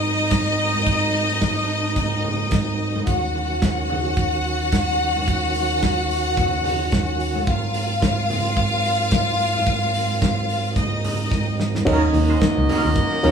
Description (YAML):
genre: disco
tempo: 109 BPM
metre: 4/4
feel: swing 56% on 16ths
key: Eb dorian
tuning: A4 = 437 Hz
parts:
  - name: clear studio string section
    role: second line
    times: 0.0-13.3 s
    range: Gb3 to Gb5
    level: -22 LUFS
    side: left 1 dB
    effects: none
  - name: percussive tonewheel organ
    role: sustained chords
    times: 0.0-13.3 s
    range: Eb2 to Gb4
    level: -25 LUFS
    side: right 2 dB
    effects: overdrive, chorus vibrato, slow rotary speaker
  - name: congas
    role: percussion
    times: 0.0-13.3 s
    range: none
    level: -30 LUFS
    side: left 1 dB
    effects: none
  - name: damped 70s drum kit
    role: drums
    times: 0.3-13.3 s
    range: crash cymbal, hi-hat, kick drum, snare drum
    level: -24 LUFS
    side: right 1 dB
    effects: none
  - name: barky reed electric piano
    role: accompaniment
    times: 11.9-13.3 s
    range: Gb3 to Bb4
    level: -20 LUFS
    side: right 1 dB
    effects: overdrive, tremolo
  - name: electric guitar at the edge of break-up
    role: accompaniment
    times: 11.9-13.3 s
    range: Db4 to C5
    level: -29 LUFS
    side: right 5 dB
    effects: wah, spring reverb
  - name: clear horn section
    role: stabs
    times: 11.9-13.3 s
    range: Bb3 to Eb5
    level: -25 LUFS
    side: right 1 dB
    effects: tape echo
  - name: vintage muted picked electric bass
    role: bass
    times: 11.9-13.3 s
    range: Db2 to Eb2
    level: -21 LUFS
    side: equal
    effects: none
room: wet large studio reverb, RT60 0.9 s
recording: band playing live in one room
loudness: -18 LUFS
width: side -7 dB against mid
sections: 0.0-11.9 A section; 11.9-13.3 B section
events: drum fill 11.3-11.9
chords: 0.0 Ab9; 3.1 Ebm7; 7.5 Ab9; 11.9 Ebm7